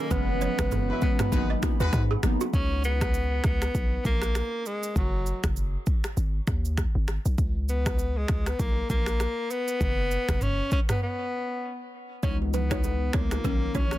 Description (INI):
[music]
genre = afrobeats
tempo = 99 BPM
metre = 4/4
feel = swing 58% on 16ths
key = unclear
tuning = A4 = 440 Hz
[part]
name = breathy tenor saxophone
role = melody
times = 0.0-14.0 s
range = F#3 to C#4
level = -31 LUFS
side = left 1 dB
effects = tape echo
[part]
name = granular cloud pad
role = sustained chords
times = 0.0-2.5 s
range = C#4 to B5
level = -38 LUFS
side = right 2 dB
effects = built-in reverb
[part]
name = balafon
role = riff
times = 0.0-2.5, 12.2-13.8 s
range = F#4 to D#5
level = -36 LUFS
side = right 6 dB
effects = tape echo
[part]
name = glassy wavetable pluck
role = accompaniment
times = 0.1-2.4, 12.2-13.9 s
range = D#3 to D#4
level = -32 LUFS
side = left 2 dB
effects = chorus
[part]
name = warm 808-style bass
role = bass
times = 0.1-14.0 s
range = F#1 to G#2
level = -27 LUFS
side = equal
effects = none
[part]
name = afro-pop drum kit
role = drums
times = 0.1-14.0 s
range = finger snaps, kick drum, rim click, shaker, toms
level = -28 LUFS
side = equal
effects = soft clipping on snare
[part]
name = congas and bongos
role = percussion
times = 0.1-2.5, 12.2-13.9 s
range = none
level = -37 LUFS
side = right 11 dB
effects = none
[part]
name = warm horn section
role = second line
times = 0.9-2.0 s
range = F#3 to B4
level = -33 LUFS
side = left 3 dB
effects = none
[sound]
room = little or no reverb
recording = dense, heavily limited modern master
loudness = -24 LUFS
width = side -15 dB against mid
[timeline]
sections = 0.0-2.5 A section; 2.5-14.0 B section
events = band accent 0.1-2.5; break 11.0-12.2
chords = 0.1 F#7sus4; 1.3 G#m7; 2.5 Bsus2/C#; 3.7 G#madd9/A#; 5.0 N.C.; 6.2 G#5; 7.4 G#madd11/C#; 8.6 N.C.; 9.8 F#sus4; 11.0 N.C.; 12.2 C#m7; 13.4 Bmaj9